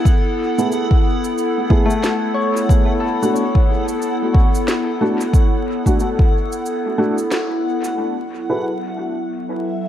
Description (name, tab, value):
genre	ambient dub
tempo	91 BPM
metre	4/4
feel	swing 60% on 16ths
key	F# minor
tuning	A4 = 441 Hz
part	warbly tape-like pad	sustained chords	0.0-9.9 s	F#3 to A4	-21 LUFS	left 1 dB	chorus, built-in reverb, phaser
part	backwards swelling texture	texture	0.0-9.9 s	E5 to F#5	-29 LUFS	equal	built-in reverb
part	electronic cabasa and snare drum	drums	0.1-9.9 s	none	-27 LUFS	equal	low-pass filter on perc, studio reverb, low-pass filter on snare, dub echo
part	electronic kick drum	drums	0.1-6.3 s	none	-14 LUFS	equal	studio reverb
part	dark upright piano	stabs	0.6-8.7 s	A3 to B4	-23 LUFS	right 1 dB	dub echo
part	Celtic harp	arpeggios	1.9-5.2 s	A3 to C#5	-24 LUFS	left 4 dB	dub echo
room	light reverb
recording	echo-heavy mix, vinyl crackle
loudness	-16 LUFS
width	side -11 dB against mid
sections	0.0-8.0 A section; 8.0-9.9 B section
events	break 6.7-8.0; band accent 7.3-7.6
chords	0.0 F#m11; 2.7 Esus4; 8.0 F#m11